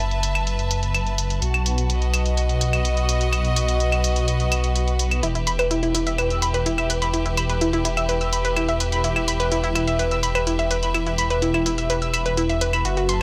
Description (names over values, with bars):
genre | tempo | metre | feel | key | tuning
melodic techno | 126 BPM | 4/4 | straight | E harmonic minor | A4 = 440 Hz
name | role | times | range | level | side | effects
dark detuned saw bass | bass | 0.0-13.2 s | E1 to B1 | -26 LUFS | equal | tube saturation
bright symphonic string section | texture | 0.0-13.2 s | F#4 to A5 | -30 LUFS | equal | none
electronic hi-hat and claves | drums | 0.1-13.2 s | none | -29 LUFS | equal | low-pass filter on hats, low-pass filter on perc, low-pass filter on room
analog pluck | arpeggios | 5.2-13.1 s | E4 to E6 | -25 LUFS | equal | chorus, analog delay
room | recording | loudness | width
little or no reverb | dry, gritty hardware recording | -22 LUFS | mono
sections
0.0-13.2 A section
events
none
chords
0.0 B7sus4/F#; 1.4 B; 5.2 Em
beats
0.47 0.94 | 1.42 1.90 2.37 2.85 | 3.33 3.80 4.28 4.75 | 5.23 5.71 6.18 6.66 | 7.14 7.61 8.09 8.56 | 9.04 9.52 9.99 10.47 | 10.95 11.42 11.90 12.37 | 12.85